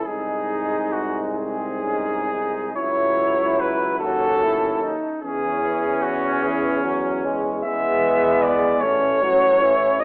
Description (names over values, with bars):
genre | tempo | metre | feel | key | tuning
classical, hymn-like piece for brass band | 41-52 BPM (dotted quarters) | 6/8 | rubato | C# minor | A4 = 441 Hz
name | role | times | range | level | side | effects
warm flugelhorn | melody | 0.0-10.0 s | F#4 to E5 | -20 LUFS | equal | none
warm French horn section | second line | 0.0-10.0 s | B3 to E4 | -30 LUFS | equal | none
warm euphonium | accompaniment | 0.0-10.0 s | E3 to A3 | -27 LUFS | equal | none
warm trombone section | accompaniment | 0.0-10.0 s | B3 to F#4 | -26 LUFS | equal | none
mellow tuba | bass | 0.0-10.0 s | A1 to E2 | -28 LUFS | equal | none
room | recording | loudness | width
moderate scoring stage reverb, RT60 1.5 s | vinyl crackle, telephone sound | -18 LUFS | side -37 dB against mid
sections
0.0-10.0 A section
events
none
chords
0.1 G#/B#; 2.8 C#m; 5.2 C#m/E; 7.6 E; 8.8 A6